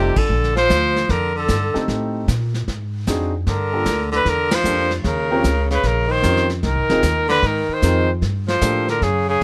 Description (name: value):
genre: jazz, small-group swing and bop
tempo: 152 BPM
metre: 4/4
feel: swing 66% on 8ths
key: unclear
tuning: A4 = 440 Hz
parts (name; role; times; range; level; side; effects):
- clear trumpet; melody; 0.0-9.4 s; G4 to C5; -22 LUFS; equal; none
- bright tenor saxophone; second line; 0.0-9.4 s; C3 to F3; -26 LUFS; equal; none
- warm concert grand piano; accompaniment; 0.0-8.9 s; G3 to Bb4; -26 LUFS; equal; none
- upright bass; bass; 0.0-9.4 s; F1 to Bb2; -24 LUFS; equal; none
- vintage brush drum kit; drums; 0.2-9.4 s; brushed snare drum, crash cymbal, hi-hat, kick drum, ride cymbal, snare drum; -28 LUFS; equal; none
room: little or no reverb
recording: close, detailed microphones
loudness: -19 LUFS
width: mono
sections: 0.0-9.4 A section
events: band accent 0.1, 4.5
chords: 0.3 Bbmaj7; 1.9 Am7b5; 2.7 Ab7#11; 3.5 Gm9; 5.1 Eb13; 6.6 Ab6; 8.2 Gm9